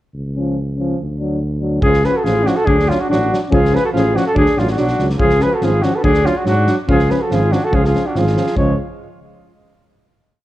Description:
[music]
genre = balkan folk, Balkan brass band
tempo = 142 BPM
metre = 2/4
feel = straight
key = C# phrygian dominant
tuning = A4 = 440 Hz
[part]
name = mellow tuba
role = bass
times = 0.1-8.8 s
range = G#1 to G#2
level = -19 LUFS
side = equal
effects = none
[part]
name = warm euphonium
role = accompaniment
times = 0.4-8.8 s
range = C#4 to D4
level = -23 LUFS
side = left 3 dB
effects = none
[part]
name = warm trombone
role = accompaniment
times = 0.4-8.8 s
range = E#3 to F#3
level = -24 LUFS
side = right 4 dB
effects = none
[part]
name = mellow flugelhorn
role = melody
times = 1.8-8.8 s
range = E#4 to C#5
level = -18 LUFS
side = equal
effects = none
[part]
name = bright alto saxophone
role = second line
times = 1.8-8.8 s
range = G#3 to G#4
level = -23 LUFS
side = right 2 dB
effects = tape echo
[part]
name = loose indie drum kit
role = percussion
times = 1.8-8.8 s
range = kick drum, snare drum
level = -22 LUFS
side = equal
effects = none
[sound]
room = light reverb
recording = worn, warbling old tape, cassette tape, warbly pitch drift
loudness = -13 LUFS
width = side -15 dB against mid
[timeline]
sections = 0.1-1.8 intro; 1.8-8.6 A section; 8.6-9.4 final chord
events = none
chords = 0.1 C#; 1.0 D; 1.8 C#; 2.7 D; 3.5 C#; 4.4 D; 5.2 C#; 6.0 D; 6.9 C#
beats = | 0.15 0.57 | 0.99 1.41 | 1.83 2.25 | 2.68 3.10 | 3.52 3.94 | 4.36 4.78 | 5.21 5.63 | 6.05 6.47 | 6.89 7.31 | 7.72 8.14 | 8.56

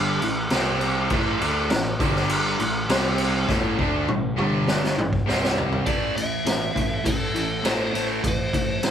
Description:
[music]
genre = hard rock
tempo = 101 BPM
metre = 4/4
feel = straight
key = A minor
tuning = A4 = 442 Hz
[part]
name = cranked stack guitar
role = riff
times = 0.0-8.9 s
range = G2 to D4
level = -28 LUFS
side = left 5 dB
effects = overdrive
[part]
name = overdriven electric guitar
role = riff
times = 0.0-8.9 s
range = G2 to D4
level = -28 LUFS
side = right 6 dB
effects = none
[part]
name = fuzz picked electric bass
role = bass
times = 0.0-8.9 s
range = G1 to D2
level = -30 LUFS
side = equal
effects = overdrive
[part]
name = raw garage drum kit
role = drums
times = 0.2-8.9 s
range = crash cymbal, kick drum, ride cymbal, snare drum, toms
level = -24 LUFS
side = equal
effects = none
[part]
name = biting lead guitar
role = melody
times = 5.9-8.9 s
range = A4 to E5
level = -28 LUFS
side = left 1 dB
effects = overdrive
[sound]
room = light reverb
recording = band playing live in one room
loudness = -20 LUFS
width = side -9 dB against mid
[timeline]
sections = 0.0-5.9 A section; 5.9-8.9 B section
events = drum fill 3.5-5.9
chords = 0.2 A5; 0.5 C5; 1.1 A5; 2.0 G5; 2.6 A5; 2.9 C5; 3.5 A5; 4.4 G5; 5.0 A5; 5.3 C5; 5.9 Am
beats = 0.50 | 1.10 1.69 2.29 2.88 | 3.48 4.07 4.67 5.26 | 5.86 6.45 7.05 7.64 | 8.24 8.84

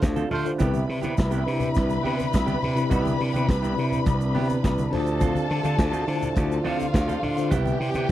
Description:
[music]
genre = disco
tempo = 104 BPM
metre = 4/4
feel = straight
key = C major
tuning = A4 = 440 Hz
[part]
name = warm studio string section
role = second line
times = 0.0-8.1 s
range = F4 to B5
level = -30 LUFS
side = left 2 dB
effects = none
[part]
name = mellow tine electric piano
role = accompaniment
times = 0.0-8.1 s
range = C3 to C5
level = -27 LUFS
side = left 2 dB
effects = medium stereo tremolo
[part]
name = semi-hollow electric guitar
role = accompaniment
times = 0.0-8.1 s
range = B3 to A4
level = -33 LUFS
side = right 7 dB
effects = spring reverb
[part]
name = mellow French horn section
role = sustained chords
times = 0.0-8.1 s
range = C3 to B4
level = -33 LUFS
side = right 1 dB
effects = none
[part]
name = gritty slap bass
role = bass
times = 0.0-8.1 s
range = C2 to D3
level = -27 LUFS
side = equal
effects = overdrive
[part]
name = vintage drum kit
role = drums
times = 0.0-8.1 s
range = hi-hat, kick drum, snare drum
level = -24 LUFS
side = equal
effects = none
[part]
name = congas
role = percussion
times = 0.0-8.1 s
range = none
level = -34 LUFS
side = left 2 dB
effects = none
[part]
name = tube shaker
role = percussion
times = 0.0-8.1 s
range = none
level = -49 LUFS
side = right 12 dB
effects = none
[part]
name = warm horn section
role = stabs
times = 0.3-0.5 s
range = A3 to C5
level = -28 LUFS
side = right 4 dB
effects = none
[sound]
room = little or no reverb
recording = dry, close 1970s-style studio recording, faint mains hum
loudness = -21 LUFS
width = side -13 dB against mid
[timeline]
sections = 0.0-8.1 A section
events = band accent 0.0-0.6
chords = 0.0 Dm7; 0.6 Cmaj7; 4.9 Dm7; 7.5 Cmaj7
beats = 0.02 | 0.60 1.18 1.75 2.33 | 2.90 3.48 4.06 4.63 | 5.21 5.79 6.36 6.94 | 7.51 8.09

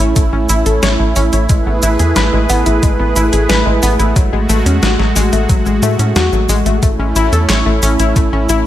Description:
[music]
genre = synthwave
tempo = 90 BPM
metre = 4/4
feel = straight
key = A major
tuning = A4 = 440 Hz
[part]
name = brassy analog pad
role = sustained chords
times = 0.0-8.7 s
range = G#3 to B4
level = -17 LUFS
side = right 2 dB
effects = chorus, sidechain pumping
[part]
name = analog pluck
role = arpeggios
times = 0.0-8.7 s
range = F#3 to C#5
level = -17 LUFS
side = left 4 dB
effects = chorus, ping-pong delay
[part]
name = tight sequencer bass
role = bass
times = 0.0-8.6 s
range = A1 to A2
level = -15 LUFS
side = equal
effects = sidechain pumping
[part]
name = detuned 8-bit digital drum machine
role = drums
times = 0.2-8.6 s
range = cabasa, handclaps, hi-hat, snare drum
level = -19 LUFS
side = right 1 dB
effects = overdrive, small room ambience
[part]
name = electronic kick drum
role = drums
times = 0.2-8.3 s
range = none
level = -13 LUFS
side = equal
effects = overdrive, small room ambience
[sound]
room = light reverb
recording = none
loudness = -10 LUFS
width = side -12 dB against mid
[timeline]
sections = 0.0-8.7 A section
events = none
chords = 0.0 A; 1.5 E/A; 4.2 F#madd9/A; 6.8 A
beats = 0.16 0.83 | 1.50 2.16 2.83 3.50 | 4.16 4.83 5.50 6.16 | 6.83 7.50 8.16

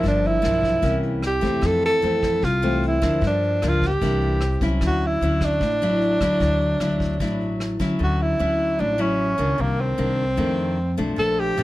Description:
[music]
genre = bossa nova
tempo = 151 BPM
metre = 4/4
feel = straight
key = unclear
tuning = A4 = 440 Hz
[part]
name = breathy tenor saxophone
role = melody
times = 0.0-11.6 s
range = Bb3 to A4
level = -22 LUFS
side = right 1 dB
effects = plate reverb
[part]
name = nylon-string guitar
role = accompaniment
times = 0.0-11.6 s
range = F2 to E4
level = -24 LUFS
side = left 2 dB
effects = none
[part]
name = upright bass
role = bass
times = 0.0-11.6 s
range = G1 to G2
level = -25 LUFS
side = equal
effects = none
[part]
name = vintage brush drum kit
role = drums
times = 0.0-7.9 s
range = hi-hat, kick drum, rim click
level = -31 LUFS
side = equal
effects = none
[sound]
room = light reverb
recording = none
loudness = -19 LUFS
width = side -16 dB against mid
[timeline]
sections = 0.0-8.0 A section; 8.0-11.6 A section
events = none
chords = 0.0 Gm7; 0.8 C7b9; 1.6 Fmaj7; 3.2 Gm7; 4.0 C9; 4.8 Dmaj9; 9.6 Cm9; 10.4 F6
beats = | 0.05 0.44 0.84 1.24 | 1.63 2.03 2.43 2.83 | 3.22 3.62 4.02 4.41 | 4.81 5.21 5.61 6.00 | 6.40 6.80 7.20 7.59 | 7.99 8.39 8.79 9.18 | 9.58 9.98 10.38 10.78 | 11.17 11.57

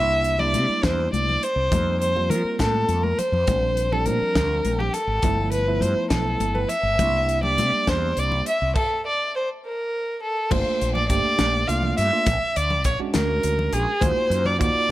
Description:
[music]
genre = electric jazz fusion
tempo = 68 BPM (dotted quarters)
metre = 6/8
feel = straight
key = Bb major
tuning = A4 = 440 Hz
[part]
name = warm violin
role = melody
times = 0.0-14.9 s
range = G4 to F5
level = -22 LUFS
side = equal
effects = none
[part]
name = tine electric piano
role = accompaniment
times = 0.0-14.9 s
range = F3 to G4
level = -29 LUFS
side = right 3 dB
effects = medium stereo tremolo
[part]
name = mellow fretless electric bass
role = bass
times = 0.0-14.8 s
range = G1 to F3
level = -25 LUFS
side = equal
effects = none
[part]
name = crisp fusion drum kit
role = drums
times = 0.2-14.7 s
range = crash cymbal, hi-hat, kick drum, snare drum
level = -27 LUFS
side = equal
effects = none
[part]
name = congas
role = percussion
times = 0.4-14.6 s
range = none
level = -30 LUFS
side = left 4 dB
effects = none
[sound]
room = small room ambience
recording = none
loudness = -20 LUFS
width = side -15 dB against mid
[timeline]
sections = 0.0-10.5 A section; 10.5-14.9 B section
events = drum fill 2.7-3.5; stop 8.8-10.5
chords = 0.0 C9; 1.7 F9sus4; 3.5 Bb69; 5.2 G13; 7.0 C9; 8.8 N.C.; 10.5 Gm9; 12.3 Bb7alt; 14.0 Ebmadd9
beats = 0.83 | 1.71 2.60 | 3.48 4.36 | 5.24 6.12 | 7.00 7.88 | 8.76 9.63 | 10.51 11.39 | 12.27 13.15 | 14.03 14.90

